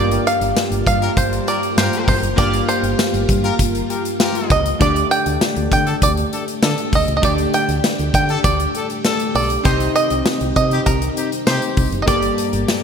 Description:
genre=1980s-style pop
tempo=99 BPM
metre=4/4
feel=straight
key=G minor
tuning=A4 = 440 Hz
part: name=bluegrass banjo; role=melody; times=0.0-12.8 s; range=Bb4 to G5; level=-20 LUFS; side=right 3 dB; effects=none
part: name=chorused retro synth keys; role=accompaniment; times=0.0-12.8 s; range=G2 to F5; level=-23 LUFS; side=left 1 dB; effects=none
part: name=string machine, full ensemble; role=sustained chords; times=0.0-12.8 s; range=G3 to A5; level=-26 LUFS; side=left 1 dB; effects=ensemble chorus
part: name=solid FM bass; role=bass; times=0.0-12.6 s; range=F#1 to D3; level=-22 LUFS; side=equal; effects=none
part: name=big rock drum kit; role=drums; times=0.1-12.8 s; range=hi-hat, kick drum, snare drum, tambourine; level=-20 LUFS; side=left 1 dB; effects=none
part: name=warm horn section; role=stabs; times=1.0-11.9 s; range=C4 to Bb4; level=-26 LUFS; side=left 5 dB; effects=none
room=moderate plate reverb, RT60 2.0 s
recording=bright 1980s-style digital production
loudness=-15 LUFS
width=side -7 dB against mid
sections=0.0-12.8 A section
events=none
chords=0.0 Gm7; 4.8 Dsus4; 9.7 Cm; 12.1 Gmadd9

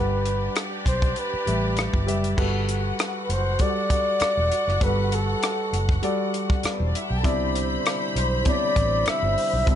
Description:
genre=lush 1970s-style soul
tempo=99 BPM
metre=4/4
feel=swing 54% on 16ths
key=unclear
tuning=A4 = 440 Hz
part: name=mellow flugelhorn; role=melody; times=0.0-9.8 s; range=A4 to E5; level=-25 LUFS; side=left 1 dB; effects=plate reverb
part: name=rich studio string section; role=second line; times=0.0-9.8 s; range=B3 to B5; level=-30 LUFS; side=equal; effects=none
part: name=dark baby grand piano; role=accompaniment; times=0.0-9.8 s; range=B2 to F#5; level=-29 LUFS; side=left 1 dB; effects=none
part: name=vintage muted fingered electric bass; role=bass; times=0.0-9.8 s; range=E1 to C2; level=-26 LUFS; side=equal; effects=none
part: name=compact cocktail drum kit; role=drums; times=0.3-9.8 s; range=crash cymbal, hi-hat, kick drum, rim click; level=-25 LUFS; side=equal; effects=none
part: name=mellow tonewheel organ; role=sustained chords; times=7.2-9.8 s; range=D3 to E4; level=-34 LUFS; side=right 1 dB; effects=slow rotary speaker
room=light reverb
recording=nothing above 10.5 kHz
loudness=-21 LUFS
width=side -10 dB against mid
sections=0.0-2.4 A section; 2.4-9.8 B section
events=none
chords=0.0 Gmaj7; 2.4 Gmaj9; 7.2 Cmaj9

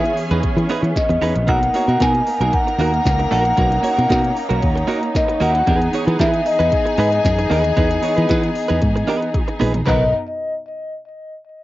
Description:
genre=disco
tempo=114 BPM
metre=4/4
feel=straight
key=B major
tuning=A4 = 442 Hz
part: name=vibraphone with soft mallets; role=melody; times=0.0-10.1 s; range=D#5 to G#5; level=-20 LUFS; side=left 1 dB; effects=cassette tape, tape echo
part: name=warm studio violin section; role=second line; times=0.0-10.1 s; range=A#3 to A#5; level=-28 LUFS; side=left 2 dB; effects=cassette tape
part: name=direct-recorded clean electric guitar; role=accompaniment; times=0.0-10.0 s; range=F#3 to C#5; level=-22 LUFS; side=right 4 dB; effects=cassette tape
part: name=rich studio string section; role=sustained chords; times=0.0-10.1 s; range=B2 to A#4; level=-25 LUFS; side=equal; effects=cassette tape
part: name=fingered electric bass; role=bass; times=0.0-10.1 s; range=A#1 to E3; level=-19 LUFS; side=equal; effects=none
part: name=minimal click drum kit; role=drums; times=0.1-10.0 s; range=handclaps, hi-hat, kick drum, snare drum, toms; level=-22 LUFS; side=equal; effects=cassette tape
room=light reverb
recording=home recording on cassette, nothing above 7.5 kHz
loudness=-15 LUFS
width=side -16 dB against mid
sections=0.0-9.9 A section; 9.9-11.6 B section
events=drum fill 9.3-9.9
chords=0.0 Bmaj7

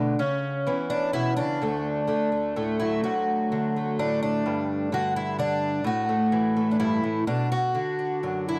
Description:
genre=folk, solo fingerstyle acoustic guitar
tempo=127 BPM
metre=3/4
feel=rubato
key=D major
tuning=A4 = 440 Hz
part: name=fingerpicked twelve-string acoustic guitar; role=solo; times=0.0-8.6 s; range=D2 to F#4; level=-26 LUFS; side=equal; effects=none
room=small room reverb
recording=dry, close 1970s-style studio recording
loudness=-26 LUFS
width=mono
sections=0.0-3.0 A section; 3.0-8.6 B section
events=none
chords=0.2 Bsus24; 1.6 D; 4.5 Gsus2; 7.3 Bm

